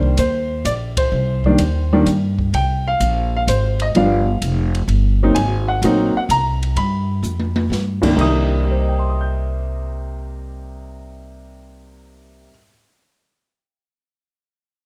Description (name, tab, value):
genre	jazz piano trio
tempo	128 BPM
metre	3/4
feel	swing 69% on 8ths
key	C minor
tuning	A4 = 439 Hz
part	warm upright piano	melody	0.0-12.7 s	C2 to G6	-21 LUFS	equal	none
part	upright bass	bass	0.0-12.5 s	F1 to G2	-22 LUFS	equal	none
part	open jazz drum kit	drums	0.0-8.3 s	crash cymbal, hi-hat, kick drum, ride cymbal, snare drum, toms	-29 LUFS	equal	none
room	moderate large studio reverb, RT60 0.9 s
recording	none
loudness	-18 LUFS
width	mono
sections	0.0-2.5 A section; 2.5-8.2 B section; 8.2-11.0 C section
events	band accent 0.9; drum fill 7.2-7.7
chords	0.0 Cm7; 2.5 Abadd9; 3.9 G7; 5.4 Ab9; 6.8 G7; 8.2 Cm7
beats	0.18 0.65 | 1.12 1.59 2.06 | 2.54 3.00 3.48 | 3.95 4.42 4.89 | 5.36 5.83 6.30 | 6.77 7.24 7.71 | 8.18 8.64 9.12 | 9.59 10.05 10.52